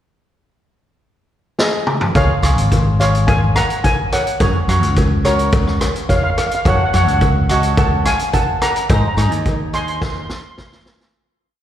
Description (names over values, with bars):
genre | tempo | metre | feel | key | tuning
calypso | 107 BPM | 4/4 | straight | Db major | A4 = 442 Hz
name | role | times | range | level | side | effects
steel pan | melody | 1.6-10.8 s | Ab4 to C6 | -20 LUFS | equal | slapback echo, ping-pong delay
street-band drum kit | drums | 1.6-11.1 s | hi-hat, kick drum, rim click, snare drum, toms | -18 LUFS | equal | none
cavaquinho | accompaniment | 2.2-10.4 s | Eb4 to Eb5 | -23 LUFS | right 1 dB | slapback echo
fingered electric bass | bass | 2.2-10.3 s | Ab1 to Ab2 | -17 LUFS | equal | none
cowbell | percussion | 2.2-11.0 s | none | -27 LUFS | left 2 dB | slapback echo
room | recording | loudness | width
light reverb, small room ambience | live gig heard through the venue's PA, recital hall reverb | -13 LUFS | side -11 dB against mid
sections
0.0-2.2 pickup bar; 2.2-11.2 chorus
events
drum fill 1.6-2.2, 10.0-11.2; fade-out 8.9-11.2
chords
0.0 N.C.; 2.2 Db; 4.4 Gb; 6.7 Gbm; 8.9 Ab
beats
0.46 1.03 1.59 | 2.15 2.72 3.28 3.84 | 4.41 4.97 5.53 6.09 | 6.65 7.22 7.78 8.34 | 8.90 9.47 10.03 10.60